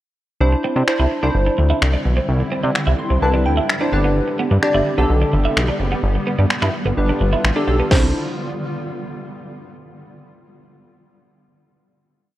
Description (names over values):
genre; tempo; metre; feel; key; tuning
dance-pop; 128 BPM; 4/4; straight; C major; A4 = 440 Hz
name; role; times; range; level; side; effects
glassy digital keys; accompaniment; 0.4-8.1 s; D4 to C6; -21 LUFS; equal; chorus, sidechain pumping
granular cloud pad; sustained chords; 1.4-8.1 s; D3 to G4; -26 LUFS; equal; built-in reverb, sidechain pumping
chorused synth bass; bass; 0.4-8.1 s; F#1 to C3; -17 LUFS; equal; sidechain pumping
twelve-string electric guitar; riff; 0.5-8.1 s; B3 to E4; -25 LUFS; right 4 dB; ensemble chorus
house drum kit; drums; 0.9-8.0 s; crash cymbal, finger snaps, kick drum, snare drum; -22 LUFS; equal; none
room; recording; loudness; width
light reverb; worn, warbling old tape, cassette tape, warbly pitch drift; -16 LUFS; side -14 dB against mid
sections
0.4-7.9 verse; 7.9-9.8 final chord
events
synth keys fill 2.8-4.2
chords
0.4 Cadd9; 3.9 G; 7.9 Cadd9